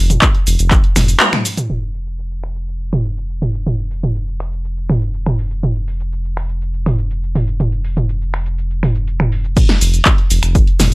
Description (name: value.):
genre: acid house.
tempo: 122 BPM.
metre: 4/4.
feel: straight.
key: unclear.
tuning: A4 = 436 Hz.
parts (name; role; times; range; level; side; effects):
round analog bass; bass; 0.0-10.9 s; F1; -18 LUFS; equal; sidechain pumping.
punchy analog drum machine; drums; 0.1-10.9 s; crash cymbal, finger snaps, handclaps, hi-hat, shaker, snare drum, toms; -16 LUFS; equal; low-pass filter on hats, low-pass filter on perc, low-pass filter on toms, low-pass filter on snare, low-pass filter on cymbals.
electronic kick drum; drums; 0.2-0.8, 9.6-10.6 s; none; -13 LUFS; equal; none.
room: light reverb.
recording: none.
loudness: -14 LUFS.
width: side -23 dB against mid.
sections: 0.0-1.7 A section; 1.7-9.6 B section; 9.6-10.9 A section.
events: drop 0.0-1.7, 9.6-10.9; break 1.2-1.7; drum fill 1.2-1.7; band accent 1.2.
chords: none.